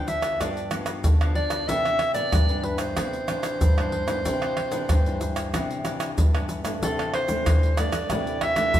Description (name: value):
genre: samba and choro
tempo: 94 BPM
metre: 4/4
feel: straight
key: C major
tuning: A4 = 440 Hz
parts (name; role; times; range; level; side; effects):
- warm soprano saxophone; melody; 0.0-8.8 s; A4 to E5; -26 LUFS; right 1 dB; none
- nylon-string guitar; accompaniment; 0.0-8.8 s; G2 to D4; -30 LUFS; left 2 dB; none
- egg shaker, pandeiro, tamborim and surdo; percussion; 0.1-8.8 s; none; -24 LUFS; equal; none
room: wet large studio reverb, RT60 1.4 s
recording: band playing live in one room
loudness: -22 LUFS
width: side -11 dB against mid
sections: 0.0-6.8 A section; 6.8-8.8 B section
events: none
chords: 0.0 G7; 1.7 Cmaj9; 6.8 C69